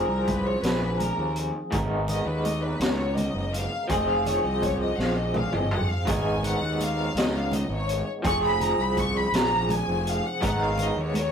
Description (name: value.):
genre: psychedelic rock.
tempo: 55 BPM (dotted quarters).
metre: 6/8.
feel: straight.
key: unclear.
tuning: A4 = 440 Hz.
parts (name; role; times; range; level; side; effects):
rich symphonic string section; sustained chords; 0.0-11.3 s; A#4 to C#6; -30 LUFS; left 2 dB; none.
electric guitar through a small old amp; riff; 0.0-11.3 s; G#2 to A#4; -27 LUFS; right 1 dB; tremolo.
fuzz fingered electric bass; bass; 0.0-11.3 s; F1 to D#2; -29 LUFS; equal; overdrive.
raw garage drum kit; drums; 0.3-11.3 s; hi-hat, kick drum, snare drum, toms; -30 LUFS; equal; none.
congas; percussion; 0.3-11.3 s; none; -34 LUFS; equal; none.
room: moderate small room reverb, RT60 0.5 s.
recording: rough rehearsal-room recording, warm saturation.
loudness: -23 LUFS.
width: side -7 dB against mid.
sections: 0.0-11.3 A section.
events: string section solo 0.0-11.3; drum fill 5.0-6.1.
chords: 0.0 Fm; 1.7 G#madd9; 3.9 Fm; 6.1 G#madd9; 8.2 Fm; 10.4 G#madd9.